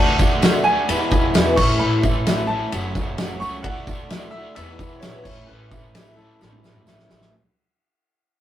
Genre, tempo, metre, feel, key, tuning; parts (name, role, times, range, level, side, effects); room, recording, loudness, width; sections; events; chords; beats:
folk rock and heartland rock; 130 BPM; 4/4; straight; A major; A4 = 439 Hz
bright grand piano; melody; 0.0-6.8 s; A4 to C#6; -24 LUFS; equal
picked twelve-string acoustic guitar; accompaniment; 0.0-7.3 s; E2 to F#4; -26 LUFS; left 2 dB
overdriven electric guitar; riff; 0.0-7.3 s; E2 to F#4; -26 LUFS; right 2 dB; harmonic tremolo
upright bass; bass; 0.0-7.3 s; F#1 to E2; -28 LUFS; equal
loose indie drum kit; drums; 0.2-7.3 s; crash cymbal, kick drum, ride cymbal, snare drum, toms; -20 LUFS; equal
tambourine; percussion; 0.2-7.2 s; -40 LUFS; right 6 dB
light reverb; rough rehearsal-room recording; -17 LUFS; side -12 dB against mid
0.0-7.3 A section
fade-out 0.0-7.3; drum fill 6.4-7.3
0.0 Dadd9; 0.9 E; 1.6 A; 2.7 F#m; 3.6 Dadd9; 4.6 E; 5.3 A
0.42 0.88 1.34 | 1.80 2.26 2.72 3.18 | 3.64 4.10 4.56 5.02 | 5.48 5.94 6.40 6.86